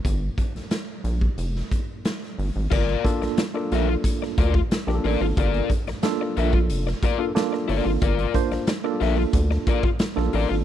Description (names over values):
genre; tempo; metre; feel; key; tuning
funk; 91 BPM; 4/4; straight; G minor; A4 = 440 Hz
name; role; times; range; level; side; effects
raw garage drum kit; drums; 0.0-10.5 s; crash cymbal, hi-hat, kick drum, snare drum; -25 LUFS; equal; none
rubbery square bass; bass; 0.1-10.6 s; F1 to D2; -24 LUFS; equal; none
crunchy overdriven guitar; accompaniment; 2.7-10.5 s; F4 to E5; -27 LUFS; left 11 dB; none
tine electric piano; stabs; 3.0-10.6 s; Bb3 to C5; -26 LUFS; right 4 dB; overdrive, slow stereo tremolo
room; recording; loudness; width
small room ambience; none; -21 LUFS; side -11 dB against mid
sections
0.0-2.7 A section; 2.7-10.6 B section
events
none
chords
0.0 Gm7; 2.7 Gm7 (rootless)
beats
| 0.05 0.72 1.38 2.05 | 2.72 3.38 4.04 4.71 | 5.37 6.03 6.69 7.36 | 8.02 8.68 9.34 10.00